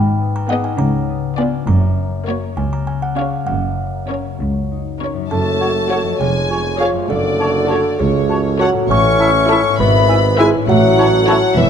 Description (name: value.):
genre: cinematic, playful, whimsical film cue.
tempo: 67 BPM (dotted quarters).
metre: 6/8.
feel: straight.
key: F# major, F# minor from 5.3 s.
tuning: A4 = 441 Hz.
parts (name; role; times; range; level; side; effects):
music box; melody; 0.0-11.7 s; C#5 to C#6; -26 LUFS; right 2 dB; none.
concert harp; arpeggios; 0.0-11.7 s; E#2 to E5; -22 LUFS; left 11 dB; none.
dark studio double bass section; bass; 0.0-11.7 s; E1 to C#2; -22 LUFS; right 3 dB; none.
warm studio cello section; bass; 0.0-11.7 s; C#2 to C#3; -21 LUFS; right 1 dB; none.
rich studio violin section; melody; 0.5-11.5 s; C#5 to E5; -26 LUFS; left 5 dB; none.
warm studio violin section; second line; 0.5-11.7 s; E#4 to C#6; -22 LUFS; left 5 dB; none.
dark studio viola section; accompaniment; 0.5-11.5 s; A#3 to C#5; -22 LUFS; right 1 dB; none.
dark bassoon; accompaniment; 5.3-11.7 s; C#3 to C#4; -17 LUFS; right 2 dB; none.
mellow French horn section; sustained chords; 5.3-11.7 s; E4 to C#5; -25 LUFS; left 4 dB; none.
warm tuba; bass; 5.3-11.7 s; E1 to C#2; -21 LUFS; right 5 dB; none.
mellow clarinet; second line; 5.6-11.4 s; E4 to F#4; -26 LUFS; equal; none.
mellow hollow silver concert flute; second line; 5.6-11.3 s; F#5 to A5; -26 LUFS; left 3 dB; none.
warm oboe; second line; 5.6-11.4 s; C#5 to E5; -26 LUFS; right 2 dB; none.
room: moderate scoring stage reverb, RT60 1.5 s.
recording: none.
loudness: -13 LUFS.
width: side -7 dB against mid.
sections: 0.0-5.3 A section; 5.3-11.7 B section.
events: none.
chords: 0.0 G#m; 0.8 C#7b9; 1.7 F#; 2.6 C#5; 3.5 F#; 5.3 F#m; 6.2 C#/E#; 7.1 F#m; 8.9 A; 9.8 E/G#; 10.7 A.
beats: 0.79 | 1.67 2.57 | 3.48 4.40 | 5.32 6.21 | 7.10 7.99 | 8.90 9.79 | 10.69 11.57.